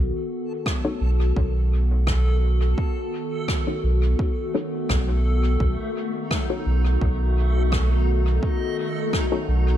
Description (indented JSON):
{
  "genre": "ambient dub",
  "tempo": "85 BPM",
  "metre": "4/4",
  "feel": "swing 53% on 16ths",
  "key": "B mixolydian",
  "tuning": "A4 = 439 Hz",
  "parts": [
    { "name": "warbly tape-like pad", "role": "sustained chords", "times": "0.0-9.8 s", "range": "D#3 to A4", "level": "-28 LUFS", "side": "left 2 dB", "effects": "chorus, built-in reverb, phaser" },
    { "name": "warm sub bass", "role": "bass", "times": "0.0-9.8 s", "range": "B1", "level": "-20 LUFS", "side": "equal", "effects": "none" },
    { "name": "backwards swelling texture", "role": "texture", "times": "0.5-9.8 s", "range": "A3 to A4", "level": "-34 LUFS", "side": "equal", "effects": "built-in reverb" },
    { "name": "electronic kick drum", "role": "drums", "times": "0.7-9.3 s", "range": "none", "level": "-26 LUFS", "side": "equal", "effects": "overdrive" },
    { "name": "rim click", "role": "drums", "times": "0.7-9.3 s", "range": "none", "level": "-32 LUFS", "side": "left 1 dB", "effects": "dub echo" },
    { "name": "filtered dub chord stab", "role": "stabs", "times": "0.8-9.5 s", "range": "D#4 to C#5", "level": "-31 LUFS", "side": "left 4 dB", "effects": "phaser, cassette tape, dub echo" }
  ],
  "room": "digital ambience",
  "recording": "none",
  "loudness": "-20 LUFS",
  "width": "side -11 dB against mid",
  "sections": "0.0-9.8 A section",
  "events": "filter sweep on synth stab 0.0-9.8",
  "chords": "0.0 B7",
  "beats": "0.66 1.37 2.07 | 2.78 3.48 4.19 4.89 | 5.60 6.31 7.01 7.72 | 8.43 9.13"
}